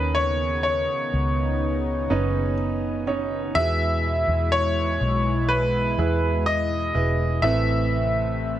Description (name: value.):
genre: pop.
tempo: 62 BPM.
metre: 4/4.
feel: straight.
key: E major.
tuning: A4 = 440 Hz.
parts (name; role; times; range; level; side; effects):
bright grand piano; melody; 0.0-8.6 s; B4 to E5; -24 LUFS; left 1 dB; ping-pong delay.
clear upright piano; accompaniment; 0.0-8.6 s; A2 to C#5; -29 LUFS; right 5 dB; none.
chorused pulse-width pad; sustained chords; 0.0-8.6 s; B2 to E4; -29 LUFS; equal; none.
vintage muted fingered electric bass; bass; 0.0-8.6 s; E1 to E2; -25 LUFS; equal; none.
room: light reverb, small room ambience.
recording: nothing above 10.7 kHz.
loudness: -20 LUFS.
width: side -12 dB against mid.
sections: 0.0-8.6 A section.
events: none.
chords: 0.0 Badd9; 3.6 E; 7.4 Amadd9.